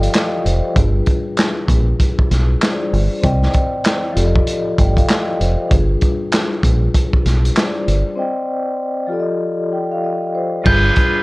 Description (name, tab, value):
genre	hip hop, boom-bap hip-hop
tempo	97 BPM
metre	4/4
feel	swing 62% on 16ths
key	unclear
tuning	A4 = 439 Hz
part	vibraphone with soft mallets	accompaniment	0.0-11.2 s	F3 to G5	-20 LUFS	left 2 dB	cassette tape, high-pass filter, low-pass filter
part	deep dub fingered electric bass	bass	0.0-10.9 s	F1 to C2	-15 LUFS	equal	none
part	crunchy breakbeat drum kit	drums	0.0-11.1 s	crash cymbal, handclaps, hi-hat, kick drum, snare drum	-17 LUFS	equal	none
part	muted trumpet section	stabs	10.6-11.2 s	F4 to B4	-22 LUFS	right 2 dB	high-pass filter, low-pass filter
part	glockenspiel with brass mallets	melody	10.7-11.2 s	G6 to G7	-16 LUFS	right 1 dB	high-pass filter, low-pass filter
room	light reverb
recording	worn, warbling old tape, cassette tape, warbly pitch drift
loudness	-14 LUFS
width	side -22 dB against mid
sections	0.0-10.7 A section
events	break 0.0-0.8, 8.2-10.7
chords	0.0 F7; 0.8 G7b9; 3.2 Cmadd9; 4.2 F7; 5.7 G7b9; 8.2 Cmadd9; 9.1 F7; 10.7 G7b9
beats	0.14 | 0.76 1.38 2.00 2.61 | 3.23 3.85 4.47 5.09 | 5.71 6.33 6.94 7.56 | 8.18 8.80 9.42 10.04 | 10.66